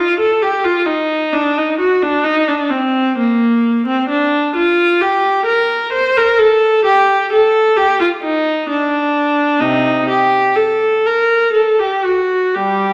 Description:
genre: classical, baroque-style suite movement for unaccompanied viola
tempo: 65 BPM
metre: 3/4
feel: rubato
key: G minor from 4.1 s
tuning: A4 = 440 Hz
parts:
  - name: rich viola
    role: solo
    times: 0.0-12.9 s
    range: C3 to C5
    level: -14 LUFS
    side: equal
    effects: none
room: wet stone room reverb, RT60 1.4 s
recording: vinyl crackle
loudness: -14 LUFS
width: mono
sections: 0.0-12.9 A section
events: none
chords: none

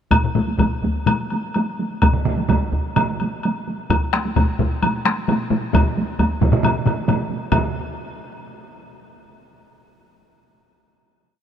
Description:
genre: japanese traditional, taiko drum ensemble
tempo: 125-148 BPM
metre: 4/4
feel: straight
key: none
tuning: none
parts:
  - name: taiko ensemble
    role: percussion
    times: 0.1-7.7 s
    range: none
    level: -23 LUFS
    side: right 2 dB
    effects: none
  - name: taiko ensemble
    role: percussion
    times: 0.1-7.9 s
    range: none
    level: -22 LUFS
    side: left 5 dB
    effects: none
  - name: taiko ensemble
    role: percussion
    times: 0.1-7.7 s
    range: none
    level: -21 LUFS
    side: equal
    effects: none
  - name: woodblock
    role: percussion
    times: 0.1-7.7 s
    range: none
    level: -26 LUFS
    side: left 2 dB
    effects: none
  - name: solo taiko drums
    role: percussion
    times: 2.0-7.9 s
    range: none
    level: -23 LUFS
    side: right 6 dB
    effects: none
room: light reverb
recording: none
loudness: -18 LUFS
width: side -8 dB against mid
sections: 0.1-7.5 A section; 7.5-10.9 final hit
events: speeding up 0.1-10.9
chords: none

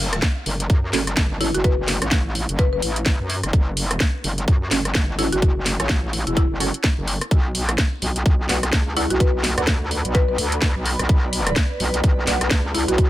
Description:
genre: bass house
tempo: 127 BPM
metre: 4/4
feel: swing 59% on 16ths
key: F# minor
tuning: A4 = 441 Hz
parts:
  - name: metallic wobble bass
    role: bass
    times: 0.0-13.1 s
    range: E1 to F#2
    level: -24 LUFS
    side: equal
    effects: chorus, tube saturation, sidechain pumping
  - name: garage drum kit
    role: drums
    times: 0.1-13.1 s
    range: hi-hat, rim click, snare drum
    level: -23 LUFS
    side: equal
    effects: none
  - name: electronic kick drum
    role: drums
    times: 0.2-13.1 s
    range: none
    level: -18 LUFS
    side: equal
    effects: none
  - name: band-passed chord stab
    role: stabs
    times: 0.9-12.3 s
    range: C#4 to F#5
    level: -29 LUFS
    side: right 4 dB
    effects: phaser, wide subtle chorus, sidechain pumping, dub echo
  - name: buzzing marimba with medium mallets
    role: melody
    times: 1.4-13.0 s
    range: E4 to B4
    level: -26 LUFS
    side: left 2 dB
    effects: dub echo
  - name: ethereal airy pad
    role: texture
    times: 9.0-13.1 s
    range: B4 to B5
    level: -30 LUFS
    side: right 1 dB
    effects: ensemble chorus, built-in reverb, phaser, sidechain pumping
room: little or no reverb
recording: none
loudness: -18 LUFS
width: side -15 dB against mid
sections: 0.0-13.1 A section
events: filter sweep on synth stab 0.0-13.1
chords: 0.0 F#m; 7.3 Bm

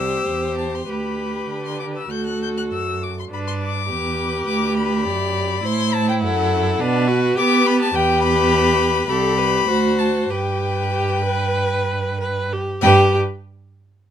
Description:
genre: quick classical-period movement for string quartet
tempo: 94-106 BPM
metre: 4/4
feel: rubato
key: G major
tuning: A4 = 440 Hz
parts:
  - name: dark violin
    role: melody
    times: 0.0-13.2 s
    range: F#5 to G6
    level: -23 LUFS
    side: left 6 dB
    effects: none
  - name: rich violin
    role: second line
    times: 0.0-13.2 s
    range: A4 to D5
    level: -26 LUFS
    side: left 4 dB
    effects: none
  - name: rich viola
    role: accompaniment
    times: 0.0-13.2 s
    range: D4 to B4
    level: -22 LUFS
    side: right 1 dB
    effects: none
  - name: warm cello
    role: bass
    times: 0.0-13.2 s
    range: C2 to B3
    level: -22 LUFS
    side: right 4 dB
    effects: none
room: light reverb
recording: close, detailed microphones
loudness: -17 LUFS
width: side -9 dB against mid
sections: 0.0-12.8 A section; 12.8-14.1 B section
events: none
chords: 0.0 C; 0.9 G/D; 2.1 D; 3.3 G; 5.6 F#m7b5; 6.8 G/B; 8.0 Em; 9.1 Am7/C; 9.7 D7; 10.3 G

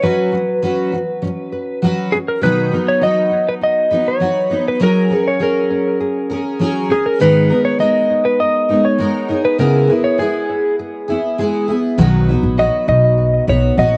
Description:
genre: pop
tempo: 100 BPM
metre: 4/4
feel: straight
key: B major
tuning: A4 = 440 Hz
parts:
  - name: clean lap steel guitar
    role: melody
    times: 0.0-14.0 s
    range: G#4 to D#5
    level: -19 LUFS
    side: equal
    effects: cassette tape, analog delay
  - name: picked steel-string acoustic guitar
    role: accompaniment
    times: 0.0-14.0 s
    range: G#2 to B4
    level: -20 LUFS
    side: equal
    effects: double-tracked, cassette tape, plate reverb
  - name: nylon-string guitar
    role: arpeggios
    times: 0.0-14.0 s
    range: F#3 to B4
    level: -27 LUFS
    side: equal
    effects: cassette tape
  - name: upright bass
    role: bass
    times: 12.0-14.0 s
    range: A#1 to B1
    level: -18 LUFS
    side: equal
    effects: none
room: wet booth ambience, RT60 0.2 s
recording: home recording on cassette, nothing above 10.5 kHz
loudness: -16 LUFS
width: mono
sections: 0.0-2.4 A section; 2.4-14.0 B section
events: none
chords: 0.0 F#sus4; 2.4 B; 4.8 F#add9; 7.2 G#madd9; 9.6 C#m7; 12.0 B

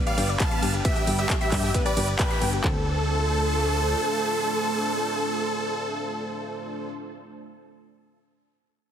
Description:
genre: uplifting trance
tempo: 134 BPM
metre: 4/4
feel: straight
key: D dorian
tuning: A4 = 435 Hz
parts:
  - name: lush unison pad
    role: sustained chords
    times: 0.0-6.9 s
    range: G3 to C5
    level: -32 LUFS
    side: right 1 dB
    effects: chorus, phaser, sidechain pumping
  - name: analog pluck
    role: arpeggios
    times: 0.0-2.8 s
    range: B3 to B5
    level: -34 LUFS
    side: left 4 dB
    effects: chorus, sidechain pumping, tape echo
  - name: big supersaw lead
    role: melody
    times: 0.1-6.9 s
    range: G4 to A5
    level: -27 LUFS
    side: right 1 dB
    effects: sidechain pumping, dub echo
  - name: warm concert grand piano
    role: second line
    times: 0.1-6.9 s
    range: A4 to A5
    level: -36 LUFS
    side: equal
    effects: sidechain pumping, tape echo
  - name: big-room dance drum kit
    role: drums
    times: 0.1-2.6 s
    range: handclaps, hi-hat, ride cymbal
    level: -31 LUFS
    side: right 1 dB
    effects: none
  - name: solid FM bass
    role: bass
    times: 0.2-3.9 s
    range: G1 to G2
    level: -26 LUFS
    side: equal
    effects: sidechain pumping
  - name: big-room dance drum kit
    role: drums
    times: 0.4-2.7 s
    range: handclaps, kick drum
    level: -26 LUFS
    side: equal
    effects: none
room: light reverb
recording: heavily compressed radio sound, multiband compression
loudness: -22 LUFS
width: side -9 dB against mid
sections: 0.0-2.6 A section; 2.6-6.2 B section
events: drop 0.0-2.6; band accent 2.2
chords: 0.0 G; 2.6 Dm7

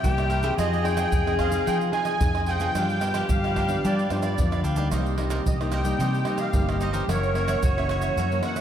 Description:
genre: samba and choro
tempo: 111 BPM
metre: 4/4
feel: straight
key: unclear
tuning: A4 = 438 Hz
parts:
  - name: musette accordion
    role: melody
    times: 0.0-8.6 s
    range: C5 to Ab5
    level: -29 LUFS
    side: right 3 dB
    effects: diffuse ambient delay
  - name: breathy tenor saxophone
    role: second line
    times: 0.0-8.6 s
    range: Gb4 to Bb4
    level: -30 LUFS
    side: left 2 dB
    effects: none
  - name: cavaquinho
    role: accompaniment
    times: 0.0-8.6 s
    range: D4 to F5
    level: -34 LUFS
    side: right 3 dB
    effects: none
  - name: nylon-string guitar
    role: accompaniment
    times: 0.0-8.6 s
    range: Gb2 to Ab4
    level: -30 LUFS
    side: left 3 dB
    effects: none
  - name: fingered electric bass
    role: bass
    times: 0.0-8.4 s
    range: Gb1 to G3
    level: -27 LUFS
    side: equal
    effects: none
  - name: maracas, surdo, pandeiro and tamborim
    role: percussion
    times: 0.0-8.6 s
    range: none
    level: -28 LUFS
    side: right 1 dB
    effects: none
room: moderate church reverb, RT60 3.3 s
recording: dreamy mix soaked in reverb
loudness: -22 LUFS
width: side -9 dB against mid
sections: 0.0-8.6 A section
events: none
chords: 0.0 C7; 0.6 Fm7; 2.8 G7; 4.9 Cm7; 7.1 Gb7

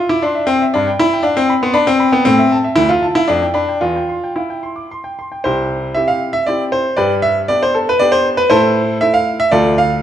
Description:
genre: classical-period piano sonatina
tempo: 117 BPM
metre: 3/4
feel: rubato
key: C major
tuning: A4 = 442 Hz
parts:
  - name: clear baby grand piano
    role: solo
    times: 0.0-10.0 s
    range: C2 to D6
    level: -12 LUFS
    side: equal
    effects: none
room: wet recital hall reverb, RT60 1.4 s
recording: dark, warm production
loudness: -12 LUFS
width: side -10 dB against mid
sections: 0.0-5.4 A section; 5.4-10.0 A section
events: none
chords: 0.0 C; 0.7 G; 2.3 Am; 2.8 Dm; 3.3 G7/F; 3.8 C/E; 5.4 C; 7.0 G; 8.5 Am

